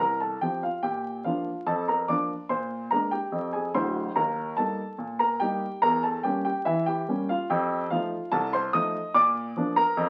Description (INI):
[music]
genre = ragtime piano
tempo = 72 BPM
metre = 2/4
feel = straight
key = Bb major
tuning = A4 = 440 Hz
[part]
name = warm baby grand piano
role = solo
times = 0.0-10.1 s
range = D1 to Eb6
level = -27 LUFS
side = equal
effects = none
[sound]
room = moderate studio reverb, RT60 0.7 s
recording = very old 78 rpm record, vinyl crackle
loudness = -27 LUFS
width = mono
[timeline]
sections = 0.0-10.1 A section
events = none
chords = 0.0 F; 0.8 Bb; 2.5 Bb7; 4.2 Eb; 5.8 Edim7; 7.5 F7; 9.1 Bb